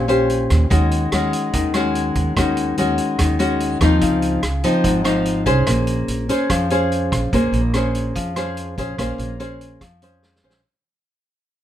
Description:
bossa nova; 145 BPM; 4/4; straight; Bb minor; A4 = 440 Hz
nylon-string guitar; accompaniment; 0.0-10.6 s; Ab2 to C5; -18 LUFS; left 1 dB
upright bass; bass; 0.0-10.6 s; Ab1 to F2; -22 LUFS; right 1 dB
vintage drum kit; drums; 0.1-10.6 s; hi-hat, kick drum, rim click, snare drum; -26 LUFS; right 1 dB
light reverb; minimal, uncompressed stereo recording; -16 LUFS; side -11 dB against mid
0.0-7.3 A section; 7.3-10.6 B section
fade-out 7.3-10.6; drum fill 10.2-10.6
0.0 Eb6; 0.7 Ab7sus4/Eb; 4.0 Dbmaj9; 5.7 Bbm9

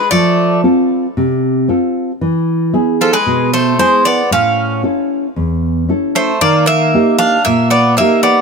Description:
greek folk, Greek bouzouki band; 114 BPM; 4/4; straight; A4 = 440 Hz
Greek bouzouki; melody; 0.0-8.4 s; A4 to F5; -13 LUFS; left 1 dB
Greek bouzouki; second line; 0.0-8.4 s; F3 to D4; -18 LUFS; right 2 dB
nylon-string guitar; accompaniment; 0.1-8.4 s; E2 to A4; -14 LUFS; equal
light reverb; close, detailed microphones; -11 LUFS; side -4 dB against mid
0.0-8.4 A section
0.1 F; 2.2 E; 4.3 A; 6.4 Eb

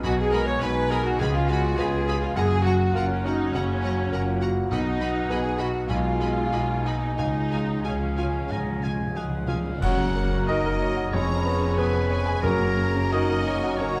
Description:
classical, romantic movement for piano and orchestra; 84-107 BPM; 4/4; rubato; F# major; A4 = 440 Hz
clear concert grand piano; melody; 0.0-14.0 s; B1 to G#5; -29 LUFS; equal
rich studio violin section; melody; 0.0-14.0 s; F#5 to B5; -42 LUFS; equal
mellow clarinet; second line; 0.0-14.0 s; G#3 to E#4; -37 LUFS; equal
rich studio violin section; second line; 0.0-14.0 s; A#4 to G#5; -41 LUFS; equal
bright studio viola section; accompaniment; 0.0-14.0 s; A#3 to C#5; -33 LUFS; equal
mellow French horn section; sustained chords; 0.0-14.0 s; G#3 to G#4; -37 LUFS; equal
rich studio cello section; bass; 0.0-14.0 s; E#2 to C#3; -35 LUFS; equal
rich studio double bass section; bass; 0.0-14.0 s; E#1 to C#2; -34 LUFS; equal
small flute group; second line; 0.1-14.0 s; C#5 to C#6; -38 LUFS; equal
dark trumpet section; stabs; 0.1-14.0 s; C#5 to G#5; -37 LUFS; equal
timpani; percussion; 1.2-2.0, 7.2-13.4 s; F#2 to C#3; -36 LUFS; equal
cymbal swell, clash cymbals and concert bass drum; percussion; 7.2-11.1 s; -35 LUFS; equal
bright oboe; second line; 7.8-14.0 s; A#4 to A#5; -37 LUFS; equal
moderate recital hall reverb, RT60 1.3 s; -24 LUFS; mono
0.0-9.8 A section; 9.8-14.0 B section
timpani fill 7.2-9.8; band accent 9.8-10.5
0.0 G#m7/B; 1.2 C#7; 2.4 F#; 4.7 B; 5.9 G#m/B; 7.2 C#; 9.8 F#; 11.1 C#7/E#; 12.4 F#

